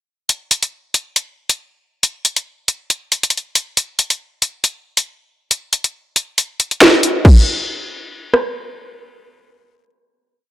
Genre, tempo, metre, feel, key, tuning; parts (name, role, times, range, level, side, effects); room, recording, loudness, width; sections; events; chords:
hip hop; 138 BPM; 4/4; half-time
drill drum kit; drums; 0.3-8.4 s; crash cymbal, hi-hat, kick drum, rim click, snare drum; -12 LUFS; equal
moderate plate reverb, RT60 2.4 s; dry, gritty hardware recording; -15 LUFS; side -14 dB against mid
0.3-7.2 breakdown; 7.2-10.5 final hit
kick muted 6.4-7.2